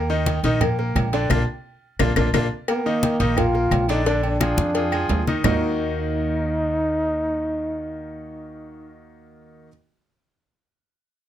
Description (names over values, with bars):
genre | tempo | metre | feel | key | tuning
latin, salsa | 174 BPM | 4/4 | straight | Eb harmonic minor | A4 = 440 Hz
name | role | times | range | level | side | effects
bright baby grand piano | accompaniment | 0.0-9.7 s | D3 to Eb5 | -25 LUFS | left 1 dB | none
upright bass | bass | 0.0-9.7 s | Bb1 to F2 | -25 LUFS | equal | none
congas | percussion | 0.1-5.5 s | none | -26 LUFS | equal | none
cowbell and bongos | percussion | 0.3-5.5 s | none | -30 LUFS | left 8 dB | none
timbales and agogo bells | percussion | 0.3-5.5 s | none | -29 LUFS | right 8 dB | none
claves | percussion | 0.6-5.5 s | none | -29 LUFS | left 12 dB | none
dark trombone | melody | 2.7-9.0 s | Bb3 to F4 | -24 LUFS | equal | none
room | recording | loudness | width
light reverb | close, detailed microphones | -19 LUFS | side -11 dB against mid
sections
0.0-2.7 A section; 2.7-5.4 B section; 5.4-8.2 C section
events
band accent 1.3-2.7; drum fill 1.8-2.7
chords
0.0 Eb5; 1.3 Bb; 2.7 Ebsus2; 4.1 Bb7; 5.4 Ebm